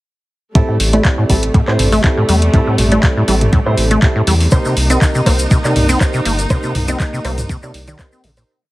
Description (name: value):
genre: acid house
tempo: 121 BPM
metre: 4/4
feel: swing 54% on 16ths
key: A phrygian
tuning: A4 = 435 Hz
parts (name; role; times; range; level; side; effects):
- rich studio string section; sustained chords; 0.6-8.4 s; C3 to Eb4; -21 LUFS; equal; sidechain pumping
- deep acid bass; riff; 0.6-8.4 s; A2 to C4; -17 LUFS; equal; tube saturation, analog chorus, cassette tape, sidechain pumping, tape echo
- warm concert grand piano; stabs; 0.6-8.5 s; C4 to Eb5; -21 LUFS; right 2 dB; tape echo
- electro analog drum machine; drums; 0.6-8.5 s; handclaps, hi-hat, toms; -20 LUFS; equal; none
- electronic kick drum; drums; 0.6-8.1 s; none; -13 LUFS; equal; overdrive
- round analog bass; bass; 0.8-8.4 s; G1 to E2; -16 LUFS; equal; tube saturation, sidechain pumping
- tube shaker; percussion; 4.5-8.5 s; none; -27 LUFS; left 1 dB; none
room: light reverb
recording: heavily compressed radio sound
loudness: -11 LUFS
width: side -18 dB against mid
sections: 0.6-8.5 groove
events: fade-out 5.8-8.5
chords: 0.6 Am7; 4.5 Cm7